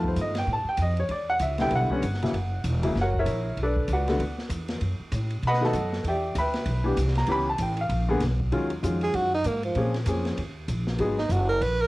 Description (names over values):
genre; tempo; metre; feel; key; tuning
jazz, small-group swing and bop; 194 BPM; 4/4; swing 60% on 8ths; B minor, Eb minor from 8.5 s; A4 = 438 Hz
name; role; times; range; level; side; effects
warm baby grand piano; accompaniment; 0.0-11.2 s; C#3 to B5; -26 LUFS; left 1 dB; cassette tape, plate reverb
upright bass; bass; 0.0-11.9 s; E1 to B2; -27 LUFS; equal; none
open jazz drum kit; drums; 0.0-11.7 s; hi-hat, kick drum, ride cymbal, snare drum; -36 LUFS; equal; none
breathy tenor saxophone; second line; 9.0-11.9 s; F3 to Cb5; -25 LUFS; right 2 dB; cassette tape, plate reverb
room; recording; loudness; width
light reverb; home recording on cassette; -24 LUFS; side -19 dB against mid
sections
0.0-8.5 A section; 8.5-11.9 A section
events
tenor saxophone solo 8.5-11.9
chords
0.0 F7#11; 1.1 Em7; 2.3 F#7; 3.6 Bm7; 4.8 F#m; 5.4 B7; 6.1 Em7; 7.3 C#m7b5; 7.9 A#7b9; 8.5 Ebm11; 9.8 Bbm9; 10.4 Eb5; 11.0 Abm7